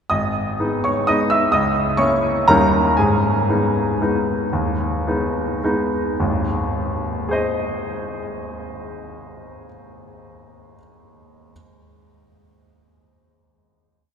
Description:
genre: classical, piano waltz.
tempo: 102-135 BPM.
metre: 3/4.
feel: rubato.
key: unclear.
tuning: A4 = 439 Hz.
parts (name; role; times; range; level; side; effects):
clear baby grand piano; solo; 0.1-11.5 s; G#1 to E6; -17 LUFS; equal; none.
room: wet cathedral reverb, RT60 6.2 s.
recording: heard from further back in the room.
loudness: -17 LUFS.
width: side -7 dB against mid.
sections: 0.1-6.2 A section; 6.2-9.4 final chord.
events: slowing down 2.2-6.2.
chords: 0.1 G#m; 1.5 A#dim/C#; 2.5 D#7; 3.0 G#m; 6.2 G#.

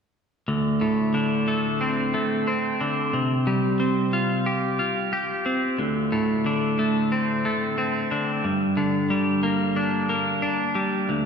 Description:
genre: rock.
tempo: 90 BPM.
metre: 4/4.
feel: straight.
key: D minor.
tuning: A4 = 436 Hz.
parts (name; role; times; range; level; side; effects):
twelve-string electric guitar; arpeggios; 0.5-11.3 s; D2 to G4; -21 LUFS; equal; none.
room: wet scoring stage reverb, RT60 2.1 s.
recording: recorded in a church or concert hall.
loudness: -21 LUFS.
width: side -6 dB against mid.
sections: 0.5-11.3 A section.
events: none.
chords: 0.5 D5; 3.1 Csus4; 5.8 D5; 8.4 Gm.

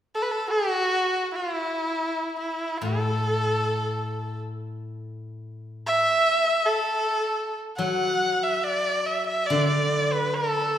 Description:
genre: chinese traditional, Chinese chamber ensemble.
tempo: free time.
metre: none.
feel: none.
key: A zhi mode.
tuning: A4 = 440 Hz.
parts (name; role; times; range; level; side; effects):
rich erhu; melody; 0.1-10.8 s; E4 to F#5; -23 LUFS; equal; none.
steel-string zither; accompaniment; 2.8-10.8 s; A2 to F#3; -28 LUFS; left 1 dB; none.
room: wet recital hall reverb, RT60 1.6 s.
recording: heard from further back in the room.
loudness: -22 LUFS.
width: side -10 dB against mid.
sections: 0.0-7.8 A section; 7.8-10.8 B section.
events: none.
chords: none.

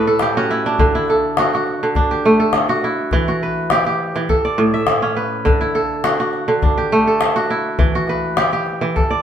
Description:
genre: west african traditional, West African string and xylophone music.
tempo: 103 BPM.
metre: 4/4.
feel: straight.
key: D major.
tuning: A4 = 441 Hz.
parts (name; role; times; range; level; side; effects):
kora; arpeggios; 0.0-9.2 s; A2 to E5; -16 LUFS; right 1 dB; none.
calabash; percussion; 0.2-9.1 s; none; -19 LUFS; left 2 dB; none.
room: wet stone room reverb, RT60 1.4 s.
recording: band playing live in one room.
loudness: -15 LUFS.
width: side -9 dB against mid.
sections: 0.0-9.2 A section.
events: kora fill 0.0-0.8.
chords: 0.0 A; 0.8 D; 3.1 Em; 4.3 A; 5.4 D; 7.8 Em.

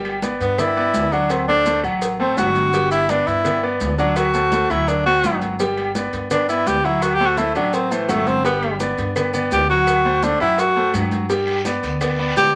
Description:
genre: latin, salsa.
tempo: 168 BPM.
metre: 4/4.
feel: straight.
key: G major.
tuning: A4 = 441 Hz.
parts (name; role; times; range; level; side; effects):
bright concert grand piano; accompaniment; 0.0-12.5 s; F#3 to G5; -25 LUFS; equal; none.
upright bass; bass; 0.0-12.6 s; G1 to G2; -29 LUFS; equal; none.
agogo bells and timbales; percussion; 0.0-12.5 s; none; -35 LUFS; equal; none.
congas; percussion; 0.0-12.5 s; none; -32 LUFS; equal; none.
cowbell; percussion; 0.0-12.5 s; none; -33 LUFS; equal; none.
claves; percussion; 0.1-12.2 s; none; -37 LUFS; equal; none.
maracas; percussion; 0.2-12.5 s; none; -39 LUFS; equal; none.
breathy tenor saxophone; melody; 0.4-12.5 s; E3 to G4; -20 LUFS; equal; none.
guiro; percussion; 11.3-12.5 s; none; -33 LUFS; equal; none.
room: wet small room reverb, RT60 0.6 s.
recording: none.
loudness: -19 LUFS.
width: mono.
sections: 0.0-12.6 A section.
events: tenor saxophone solo 0.0-12.6.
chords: 0.0 Gmaj7; 1.3 D7; 2.7 Gmaj7; 4.2 D7; 5.6 Gmaj7; 7.0 D7; 8.4 Gmaj7; 9.9 D7; 11.3 G.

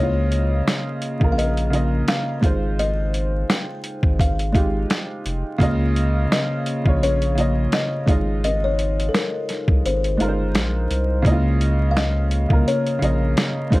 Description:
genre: lo-fi hip hop.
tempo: 85 BPM.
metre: 4/4.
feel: swing 56% on 16ths.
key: unclear.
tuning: A4 = 440 Hz.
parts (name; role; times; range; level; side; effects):
buzzing kalimba; melody; 0.0-13.7 s; A4 to G5; -26 LUFS; left 3 dB; low-pass filter.
clear upright piano; accompaniment; 0.0-13.8 s; Db3 to Eb5; -23 LUFS; right 1 dB; cassette tape, low-pass filter.
saturated sub bass; bass; 0.0-13.8 s; F1 to Db2; -22 LUFS; equal; none.
boom bap sampler-style drum kit; drums; 0.3-13.8 s; finger snaps, hi-hat, kick drum, snare drum; -20 LUFS; equal; none.
room: light reverb.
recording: vinyl crackle.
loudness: -18 LUFS.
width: side -20 dB against mid.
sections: 0.0-11.3 A section; 11.3-13.8 B section.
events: kick muted 9.8-11.3.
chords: 0.0 Db69; 2.4 Ab6; 5.6 Db69; 8.1 Ab6; 11.3 Db69.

